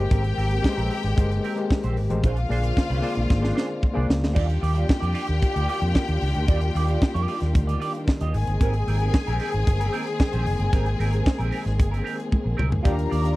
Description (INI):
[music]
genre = disco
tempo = 113 BPM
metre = 4/4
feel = straight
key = Eb major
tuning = A4 = 440 Hz
[part]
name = clear studio string section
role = second line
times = 0.0-13.4 s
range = F4 to Bb5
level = -31 LUFS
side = left 4 dB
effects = none
[part]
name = clean electric guitar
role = accompaniment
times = 0.0-13.4 s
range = C4 to Eb5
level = -32 LUFS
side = right 6 dB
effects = wah
[part]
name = overdriven reed electric piano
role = accompaniment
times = 0.0-4.4, 12.8-13.4 s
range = Eb3 to D5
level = -29 LUFS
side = left 3 dB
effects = fast tremolo
[part]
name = dark studio string section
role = sustained chords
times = 0.0-13.4 s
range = D3 to Ab4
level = -31 LUFS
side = left 1 dB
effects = none
[part]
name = fingered electric bass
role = bass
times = 0.0-13.3 s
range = Gb1 to F2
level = -24 LUFS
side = equal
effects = none
[part]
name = tight funk drum kit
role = drums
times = 0.1-13.4 s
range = crash cymbal, hi-hat, kick drum, snare drum, toms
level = -21 LUFS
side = equal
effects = none
[sound]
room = little or no reverb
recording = dry, close 1970s-style studio recording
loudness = -21 LUFS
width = side -18 dB against mid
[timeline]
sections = 0.0-4.4 A section; 4.4-13.4 A section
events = drum fill 3.3-4.4, 12.3-12.9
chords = 0.0 Abmaj9; 2.2 Bb9; 4.4 Ebmaj9; 8.3 Abmaj9; 12.9 Ebmaj9